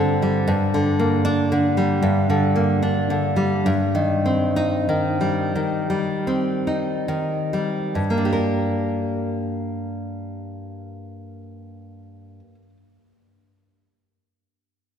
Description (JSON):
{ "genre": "romantic piece for solo classical guitar", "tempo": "45-79 BPM", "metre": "4/4", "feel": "rubato", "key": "G minor", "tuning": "A4 = 437 Hz", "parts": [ { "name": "nylon-string guitar", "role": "solo", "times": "0.0-12.8 s", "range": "G2 to Bb4", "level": "-20 LUFS", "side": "equal", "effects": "none" } ], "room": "wet church reverb, RT60 3.1 s", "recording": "recorded in a church or concert hall", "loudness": "-19 LUFS", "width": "side -8 dB against mid", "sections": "0.0-7.9 A section; 7.9-12.8 B section", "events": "slowing down 0.0-7.9", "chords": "0.0 Gsus4; 0.5 Gm; 3.7 Cm/G; 7.9 Gm" }